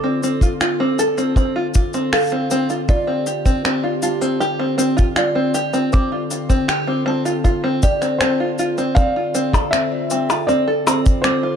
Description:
folktronica; 79 BPM; 4/4; straight; D minor; A4 = 442 Hz
kalimba; second line; 0.0-11.6 s; D5 to D6; -27 LUFS; right 1 dB; ping-pong delay
warbly tape-like pad; sustained chords; 0.0-11.6 s; D3 to A4; -26 LUFS; equal; chorus, built-in reverb
open-back banjo; arpeggios; 0.0-11.6 s; C4 to A4; -20 LUFS; equal; vintage 12-bit sampler grit, digital delay
electronic cabasa, finger snaps and percussion blips; drums; 0.2-11.4 s; -22 LUFS; left 1 dB
kick drum; drums; 0.4-11.2 s; -15 LUFS; equal
felt-muted upright piano; melody; 8.2-11.6 s; C5 to F5; -22 LUFS; left 1 dB; digital delay
light reverb, small room ambience; dark, warm production; -16 LUFS; side -8 dB against mid
0.0-9.0 A section; 9.0-11.6 B section
0.0 Dm7

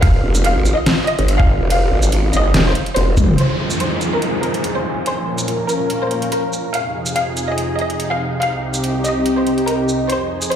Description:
heavy wobble dubstep; 143 BPM; 4/4; swing 53% on 16ths, half-time; F minor; A4 = 438 Hz
warm chamber violin section; melody; 0.0-10.6 s; Bb4 to F5; -22 LUFS; left 1 dB; tape echo
growl bass; bass; 0.0-3.4 s; F1 to Ab1; -15 LUFS; equal; chorus, overdrive
dubstep drum kit; drums; 0.0-10.6 s; hi-hat, ride cymbal, shaker, snare drum, toms; -21 LUFS; equal
electronic kick drum; drums; 0.0-3.3 s; -13 LUFS; equal
warbly tape-like pad; texture; 0.0-10.6 s; C4 to Db6; -24 LUFS; right 1 dB; chorus, built-in reverb, sidechain pumping
supersaw pad; sustained chords; 3.4-10.6 s; C2 to Bb4; -23 LUFS; equal; sidechain pumping, low-pass filter
downlifter; sound effects; 3.4-6.7 s; -24 LUFS; equal
moderate lush hall reverb, RT60 1.9 s; played on a big sound system in a bare room, large studio reverb; -15 LUFS; side -9 dB against mid
0.0-3.4 A section; 3.4-10.6 B section
drop 0.0-3.4; drum fill 3.2; filter sweep on supersaw synth 3.4-10.6
0.0 F5; 3.4 Fm7; 5.1 Bbm; 6.7 Fm7; 8.4 Cm

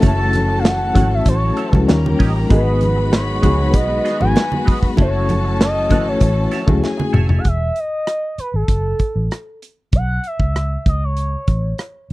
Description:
lush 1970s-style soul; 97 BPM; 4/4; straight; F# dorian; A4 = 439 Hz
warm studio string section; second line; 0.0-7.4 s; G#4 to B5; -29 LUFS; left 2 dB
reed electric piano; accompaniment; 0.0-7.5 s; E#3 to B4; -21 LUFS; left 4 dB; harmonic tremolo
warm studio string section; sustained chords; 0.0-7.4 s; D#3 to G4; -28 LUFS; left 1 dB
electric guitar through a small old amp; riff; 0.0-7.4 s; B3 to F#5; -29 LUFS; right 4 dB; wah, analog chorus
vintage muted fingered electric bass; bass; 0.0-12.1 s; E1 to D#2; -18 LUFS; equal
modern studio drum kit; drums; 0.0-12.1 s; hi-hat, kick drum, rim click, snare drum, toms; -16 LUFS; equal
congas; percussion; 0.0-7.3 s; -24 LUFS; right 2 dB
expressive portamento lead; melody; 0.1-12.1 s; A4 to A5; -22 LUFS; equal; chorus
little or no reverb; dry, close 1970s-style studio recording; -15 LUFS; side -19 dB against mid
0.0-7.5 A section; 7.5-12.1 B section
drum fill 6.8-7.5
0.0 F#m7; 1.9 D#7; 2.5 G#m7; 5.0 F#m7; 7.5 Emaj7; 8.7 F#m; 9.9 Bsus2; 10.9 A

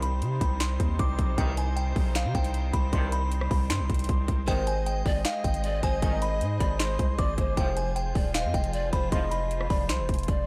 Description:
hip hop, trap; 155 BPM; 4/4; half-time; C harmonic minor; A4 = 441 Hz
glassy synth bell; melody; 0.0-10.5 s; F5 to D6; -36 LUFS; equal; chorus, tremolo
rich symphonic string section; sustained chords; 0.0-10.5 s; C3 to Eb5; -40 LUFS; equal
warm brass ensemble; stabs; 0.0-9.4 s; C2 to F3; -42 LUFS; equal; analog delay
long sustained 808-style bass; bass; 0.0-10.5 s; Eb1 to C3; -31 LUFS; equal
trap drum kit; drums; 0.0-10.4 s; finger snaps, hi-hat, kick drum, rim click, snare drum; -30 LUFS; equal
breathy mellow pan flute; second line; 4.5-10.5 s; C5 to Eb5; -35 LUFS; equal; analog delay
little or no reverb; dry, gritty hardware recording; -27 LUFS; mono
0.0-10.5 A section
0.0 Cm; 4.5 Ab; 7.6 Fm

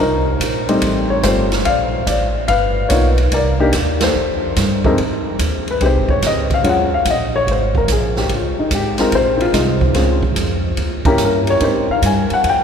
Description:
jazz piano trio; 145 BPM; 4/4; swing 67% on 8ths; F minor from 5.0 s; A4 = 440 Hz
warm upright piano; melody; 0.0-12.6 s; F2 to Ab5; -16 LUFS; left 2 dB
upright bass; bass; 0.0-12.6 s; F1 to Ab2; -19 LUFS; right 1 dB
open jazz drum kit; drums; 0.4-12.6 s; hi-hat, kick drum, ride cymbal, snare drum; -22 LUFS; right 2 dB
wet cathedral reverb, RT60 5.8 s; recorded in a church or concert hall; -14 LUFS; side -7 dB against mid
0.0-5.0 A section; 5.0-12.6 B section
band accent 3.9; upright piano solo 5.0-12.6
0.0 Cm7; 0.8 F9; 1.6 Bbmaj7; 2.5 G7alt; 3.3 Cm7; 4.1 F; 5.0 Fm7; 6.6 Ebm11; 7.5 Absus2; 8.3 Dbmaj7; 10.8 Eb7b9; 11.6 Abmaj9

